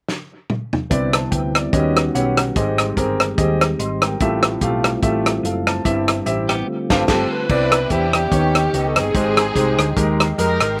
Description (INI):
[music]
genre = uptempo gospel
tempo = 146 BPM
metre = 4/4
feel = swing 56% on 8ths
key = unclear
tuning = A4 = 441 Hz
[part]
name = warm soul drum kit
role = drums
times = 0.1-10.7 s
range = crash cymbal, hi-hat, kick drum, rim click, snare drum, toms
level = -22 LUFS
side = equal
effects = none
[part]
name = warm concert grand piano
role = accompaniment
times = 0.9-10.7 s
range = G2 to C6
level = -24 LUFS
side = equal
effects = slapback echo
[part]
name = percussive tonewheel organ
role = sustained chords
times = 0.9-10.8 s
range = D3 to Db6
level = -27 LUFS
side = equal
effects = slow rotary speaker, chorus vibrato
[part]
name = hollow-body short-scale fingered electric bass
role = bass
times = 0.9-10.8 s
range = F#1 to F2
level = -26 LUFS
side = equal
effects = none
[part]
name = clean electric guitar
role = second line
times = 6.5-6.7 s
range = B3 to G4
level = -29 LUFS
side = equal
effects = slapback echo
[part]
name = warm alto saxophone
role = melody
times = 7.1-10.8 s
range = G4 to B4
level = -25 LUFS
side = equal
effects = slapback echo
[part]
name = warm studio string section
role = melody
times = 7.1-10.8 s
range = B3 to B4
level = -28 LUFS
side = equal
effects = slapback echo
[sound]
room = little or no reverb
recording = none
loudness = -18 LUFS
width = mono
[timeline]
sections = 0.9-7.5 A section; 7.5-10.8 B section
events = drum fill 0.1-0.9; band accent 6.7-7.5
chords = 0.0 N.C.; 0.9 Cmaj9; 1.7 Eb7alt; 2.6 Abmaj7; 4.2 Fmaj9/A; 5.9 C/G; 6.7 G9sus4; 7.5 Cmaj9; 8.3 Ebaug7; 9.1 Abmaj7